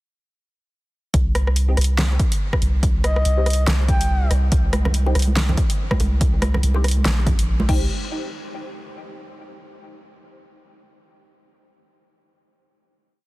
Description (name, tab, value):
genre	deep dubstep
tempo	142 BPM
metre	4/4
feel	swing 58% on 16ths, half-time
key	C minor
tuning	A4 = 442 Hz
part	soft dub sub bass	bass	1.1-7.9 s	Bb1 to C2	-18 LUFS	equal	none
part	deep house drum kit	drums	1.1-7.8 s	crash cymbal, handclaps, hi-hat, rim click, snare drum	-26 LUFS	equal	overdrive, small room ambience
part	electronic kick drum	drums	1.1-7.8 s	none	-21 LUFS	equal	overdrive, small room ambience
part	filtered dub chord stab	stabs	1.7-7.9 s	C4 to G4	-33 LUFS	left 1 dB	phaser, ensemble chorus, cassette tape, dub echo
part	breathy flute-like synth lead	melody	3.0-4.3 s	Eb5 to G5	-29 LUFS	left 2 dB	chorus, dub echo
part	congas and bongos	percussion	4.7-7.7 s	none	-28 LUFS	right 3 dB	dub echo
room	digital ambience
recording	dense, heavily limited modern master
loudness	-17 LUFS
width	side -19 dB against mid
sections	1.1-7.9 drop; 7.9-9.6 final hit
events	drop 1.1-7.9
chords	none